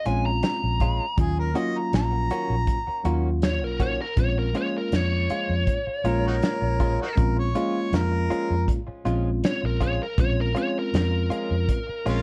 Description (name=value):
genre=straight-eighth soul blues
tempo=80 BPM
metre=4/4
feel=swing 53% on 16ths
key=Bb minor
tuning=A4 = 439 Hz
part: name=biting lead guitar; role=melody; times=0.0-12.2 s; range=Bb4 to Bb5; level=-31 LUFS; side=equal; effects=overdrive
part: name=mellow tine electric piano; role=accompaniment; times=0.1-12.2 s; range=Gb3 to F4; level=-31 LUFS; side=equal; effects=none
part: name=direct-recorded clean electric guitar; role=stabs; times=0.1-12.2 s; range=Eb3 to Gb4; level=-36 LUFS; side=equal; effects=subtle chorus, analog delay
part: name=vintage muted fingered electric bass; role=bass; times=0.1-12.2 s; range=Bb1 to F2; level=-28 LUFS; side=equal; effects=none
part: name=warm soul drum kit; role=drums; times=0.1-12.2 s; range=hi-hat, kick drum, snare drum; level=-27 LUFS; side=equal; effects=none
part: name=bright harmonica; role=second line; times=1.2-12.2 s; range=Ab3 to Bb5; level=-32 LUFS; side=equal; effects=overdrive
room=light reverb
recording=cassette tape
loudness=-24 LUFS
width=mono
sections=0.0-12.2 A section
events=none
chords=0.0 Bbm7; 1.2 Ebm7; 4.2 Bbm7